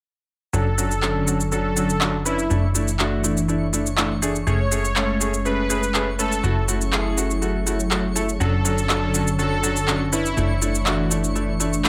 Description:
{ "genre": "progressive house", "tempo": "122 BPM", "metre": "4/4", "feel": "straight", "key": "unclear", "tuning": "A4 = 438 Hz", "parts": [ { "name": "soft supersaw", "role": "melody", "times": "0.5-10.6 s", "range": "E4 to C#5", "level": "-30 LUFS", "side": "equal", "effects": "delay" }, { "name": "warm analog pad", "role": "sustained chords", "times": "0.5-11.9 s", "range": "D3 to A4", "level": "-30 LUFS", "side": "equal", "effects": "chorus" }, { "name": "bright concert grand piano", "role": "stabs", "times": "0.5-11.9 s", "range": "F#3 to B4", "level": "-28 LUFS", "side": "equal", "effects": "low-pass filter, digital delay" }, { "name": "plucky analog bass", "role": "bass", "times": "0.5-11.9 s", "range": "F#1", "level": "-27 LUFS", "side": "equal", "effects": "none" }, { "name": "electronic shaker and handclaps", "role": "drums", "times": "0.5-11.9 s", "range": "none", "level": "-27 LUFS", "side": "equal", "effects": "overdrive" }, { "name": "twinkling granular texture", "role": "texture", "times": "1.2-11.9 s", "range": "C#5 to C#6", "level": "-40 LUFS", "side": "equal", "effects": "built-in reverb" } ], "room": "light reverb", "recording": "none", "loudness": "-22 LUFS", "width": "mono", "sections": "0.5-11.9 A section", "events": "filter sweep on analog synth pad 0.5-11.9", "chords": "0.5 Dmaj7/F#; 2.5 E7sus4/F#; 4.5 Amaj7/F#; 6.4 F#m7; 8.4 Dmaj7/F#; 10.4 E7sus4/F#" }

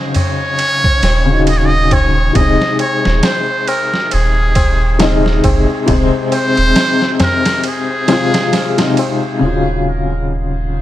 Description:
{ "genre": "trip hop", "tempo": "68 BPM", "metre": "4/4", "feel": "swing 58% on 16ths", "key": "unclear", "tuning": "A4 = 440 Hz", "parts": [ { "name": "warm upright piano", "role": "accompaniment", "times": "0.0-10.8 s", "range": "C3 to F4", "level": "-16 LUFS", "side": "left 3 dB", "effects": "tremolo, tape echo" }, { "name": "trip hop sampler-style drum kit", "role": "drums", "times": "0.1-9.2 s", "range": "kick drum, ride cymbal, snare drum", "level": "-18 LUFS", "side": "right 1 dB", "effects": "overdrive, vintage 12-bit sampler grit" }, { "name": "trumpet with metal mute", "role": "melody", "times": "0.2-8.9 s", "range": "Ab4 to Eb5", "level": "-18 LUFS", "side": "equal", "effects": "vintage 12-bit sampler grit, tape echo" }, { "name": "tabla", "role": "percussion", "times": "0.2-9.4 s", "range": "none", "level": "-24 LUFS", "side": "left 1 dB", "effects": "none" }, { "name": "soft dub sub bass", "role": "bass", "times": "1.0-10.8 s", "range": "Eb1 to Gb1", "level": "-16 LUFS", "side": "right 1 dB", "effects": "none" }, { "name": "deep dark ambient pad", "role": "sustained chords", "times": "10.8 s", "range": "none", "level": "barely audible", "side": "none", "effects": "none" } ], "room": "small room ambience", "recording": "none", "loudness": "-11 LUFS", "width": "side -14 dB against mid", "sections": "0.0-9.4 A section; 9.4-10.8 B section", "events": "filter sweep on upright piano 0.0-9.4; kick drops out 7.6-9.4", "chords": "0.0 Ebm7; 2.4 Ab/Eb; 9.4 Ebm9" }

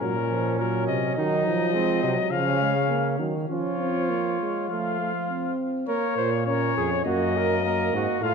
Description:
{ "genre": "classical, imitative canzona for brass ensemble", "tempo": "103 BPM", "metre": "4/4", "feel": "straight", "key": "Bb minor", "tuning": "A4 = 440 Hz", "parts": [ { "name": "warm trumpet", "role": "melody", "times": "0.0-8.3 s", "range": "Bb4 to F5", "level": "-28 LUFS", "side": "left 10 dB", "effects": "none" }, { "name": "clear flugelhorn", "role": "second line", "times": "0.0-8.3 s", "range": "C4 to C5", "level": "-29 LUFS", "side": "right 5 dB", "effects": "none" }, { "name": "warm euphonium", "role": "accompaniment", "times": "0.0-8.3 s", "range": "F3 to Db4", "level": "-29 LUFS", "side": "right 2 dB", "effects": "none" }, { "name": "mellow bass trombone", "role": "bass", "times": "0.0-8.3 s", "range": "F2 to F3", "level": "-27 LUFS", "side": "right 1 dB", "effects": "none" } ], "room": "wet scoring stage reverb, RT60 2.0 s", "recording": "dark, warm production", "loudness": "-22 LUFS", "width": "side -5 dB against mid", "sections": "0.0-5.9 A section; 5.9-8.3 B section", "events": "none", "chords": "0.0 Gb/Bb; 1.2 Cdim/Eb; 2.3 Bbm/Db; 3.5 Bbm/F; 4.7 F; 5.9 Bbm; 7.0 Ebm/Gb" }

